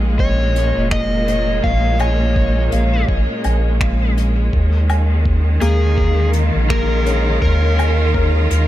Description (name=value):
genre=ambient dub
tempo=83 BPM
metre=4/4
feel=swing 59% on 16ths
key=Bb minor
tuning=A4 = 436 Hz
part: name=clear symphonic string section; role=sustained chords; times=0.0-8.7 s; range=Bb2 to F4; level=-22 LUFS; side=equal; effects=none
part: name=soft dub sub bass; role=bass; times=0.0-8.7 s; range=F1 to Eb2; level=-16 LUFS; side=equal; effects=tube saturation
part: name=overdriven slide guitar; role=melody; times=0.2-8.7 s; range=Ab4 to F5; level=-22 LUFS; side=equal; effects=tape echo
part: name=electronic kick drum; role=drums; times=0.2-8.3 s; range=none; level=-20 LUFS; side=equal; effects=none
part: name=soft brush drum kit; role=drums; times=0.6-8.7 s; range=finger snaps, hi-hat, woodblock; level=-28 LUFS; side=equal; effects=dub echo
part: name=felt-muted upright piano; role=arpeggios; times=5.6-8.7 s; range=Bb3 to Bb4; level=-27 LUFS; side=left 5 dB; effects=tape echo
room=studio reverb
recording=none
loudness=-14 LUFS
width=side -14 dB against mid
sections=0.0-8.7 A section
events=none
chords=0.0 Bbm7; 4.5 Eb9sus4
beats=0.19 0.92 | 1.64 2.36 3.08 3.81 | 4.53 5.25 5.98 6.70 | 7.42 8.14